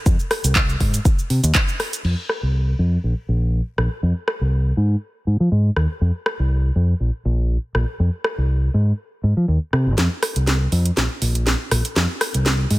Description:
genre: filtered disco house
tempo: 121 BPM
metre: 4/4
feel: swing 54% on 16ths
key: F minor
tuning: A4 = 440 Hz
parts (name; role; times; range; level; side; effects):
- fingered electric bass; bass; 0.1-12.8 s; Ab1 to F3; -18 LUFS; equal; sidechain pumping, low-pass filter
- electronic kick drum; drums; 0.1-1.7 s; none; -18 LUFS; equal; none
- house drum kit; drums; 0.1-12.8 s; cabasa, crash cymbal, handclaps, hi-hat, rim click, snare drum; -23 LUFS; equal; sidechain pumping on hats, high-pass filter on hats, low-pass filter on hats, sidechain pumping on perc, high-pass filter on perc, low-pass filter on perc, high-pass filter on snare, low-pass filter on snare, sidechain pumping on cymbals, high-pass filter on cymbals, low-pass filter on cymbals
room: digital ambience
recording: none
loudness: -18 LUFS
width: side -19 dB against mid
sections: 0.0-2.0 A section; 2.0-10.0 B section; 10.0-12.8 C section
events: filter sweep on fingered electric bass 0.0-2.0, 2.0-10.0, 10.0-12.8; build-up 10.0-12.8; drum fill 10.0-12.8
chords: none

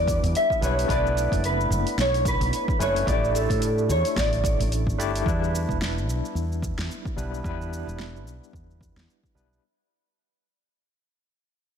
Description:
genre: sunset chillout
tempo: 110 BPM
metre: 4/4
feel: swing 57% on 16ths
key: unclear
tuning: A4 = 439 Hz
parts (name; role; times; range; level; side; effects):
- mellow electric guitar; melody; 0.0-4.7 s; A4 to E5; -25 LUFS; right 1 dB; ensemble chorus, ping-pong delay
- barky tine electric piano; accompaniment; 0.0-9.6 s; G3 to D5; -30 LUFS; moving between left 5 dB and right 4 dB; fast stereo tremolo, auto-pan, ping-pong delay
- woody fretless electric bass; bass; 0.0-9.6 s; E1 to A2; -26 LUFS; equal; none
- deep house drum kit; drums; 0.1-9.6 s; hi-hat, shaker, snare drum; -34 LUFS; equal; overdrive, studio reverb
- electronic kick drum; drums; 0.1-9.3 s; none; -29 LUFS; equal; overdrive, studio reverb
room: light reverb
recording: blown-out, overdriven recording, overdrive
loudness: -22 LUFS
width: side -7 dB against mid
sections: 0.0-5.3 A section; 5.3-9.6 B section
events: fade-out 5.3-9.6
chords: 0.0 Em7; 0.9 Bm11; 3.1 A7sus4; 5.3 Em7

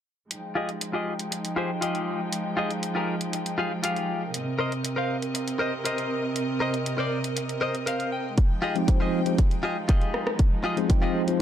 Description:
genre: nu-disco, nu disco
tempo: 119 BPM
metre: 4/4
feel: straight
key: F minor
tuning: A4 = 440 Hz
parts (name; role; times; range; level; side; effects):
- clear studio string section; sustained chords; 0.3-11.4 s; C3 to G5; -30 LUFS; right 1 dB; sidechain pumping, low-pass filter
- house drum kit; drums; 0.3-11.4 s; hi-hat, rim click; -32 LUFS; equal; none
- direct-recorded clean electric guitar; riff; 0.6-11.4 s; F4 to G5; -29 LUFS; left 2 dB; wide subtle chorus, low-pass filter, tape echo
- electronic kick drum; drums; 8.4-11.0 s; none; -21 LUFS; equal; none
- bright tine electric piano; accompaniment; 8.8-11.4 s; F3 to G5; -25 LUFS; left 1 dB; medium stereo tremolo, tape echo
room: light reverb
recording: dark, warm production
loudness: -24 LUFS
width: side -10 dB against mid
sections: 0.3-11.4 A section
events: clean electric guitar fill 7.4-8.4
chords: 0.3 Fm9; 4.3 Cm7; 8.4 Fm9

